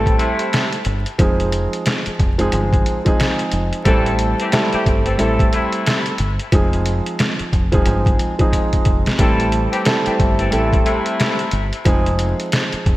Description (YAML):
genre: hip hop, boom-bap hip-hop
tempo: 90 BPM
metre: 4/4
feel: swing 61% on 16ths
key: unclear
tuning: A4 = 440 Hz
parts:
  - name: dark baby grand piano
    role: accompaniment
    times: 0.0-13.0 s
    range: F3 to A4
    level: -20 LUFS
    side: right 1 dB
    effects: cassette tape, high-pass filter, low-pass filter
  - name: mellow horn section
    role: stabs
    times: 0.0-11.4 s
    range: C3 to A4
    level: -24 LUFS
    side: left 3 dB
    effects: high-pass filter, low-pass filter, digital delay
  - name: deep dub fingered electric bass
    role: bass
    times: 0.0-13.0 s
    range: F1 to A1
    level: -21 LUFS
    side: equal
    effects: none
  - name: trip hop sampler-style drum kit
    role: drums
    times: 0.1-13.0 s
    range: hi-hat, kick drum, snare drum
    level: -18 LUFS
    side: equal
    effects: gated reverb
room: light reverb, digital ambience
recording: bright 1980s-style digital production, vinyl crackle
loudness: -15 LUFS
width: side -16 dB against mid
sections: 0.0-13.0 A section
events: drum fill 8.5-9.2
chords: 0.0 Am7; 1.2 Fm7; 3.9 Am7; 6.5 Fm7; 9.2 Am7; 11.9 Fm7